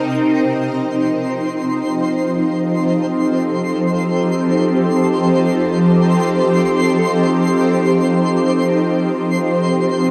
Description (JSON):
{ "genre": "ambient", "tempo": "free time", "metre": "none", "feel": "none", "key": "unclear", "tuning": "A4 = 440 Hz", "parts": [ { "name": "shimmering ambient pad", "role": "sustained chords", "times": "0.0-10.1 s", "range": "C3 to A4", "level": "-17 LUFS", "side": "equal", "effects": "chorus, built-in reverb, phaser, shimmer reverb" }, { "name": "soft synth bell", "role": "arpeggios", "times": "0.0-9.4 s", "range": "G4 to C6", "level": "-33 LUFS", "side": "equal", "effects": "none" }, { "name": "twinkling granular texture", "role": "texture", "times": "0.0-10.1 s", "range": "C5 to C6", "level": "-26 LUFS", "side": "equal", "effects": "built-in reverb, shimmer reverb" } ], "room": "wet huge ambient reverb, RT60 8.6 s", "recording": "dark, warm production", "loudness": "-16 LUFS", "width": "mono", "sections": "0.1-10.1 A section", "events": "filter sweep on ambient pad 0.1-10.1", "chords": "0.1 F9; 9.3 Cm", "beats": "free time" }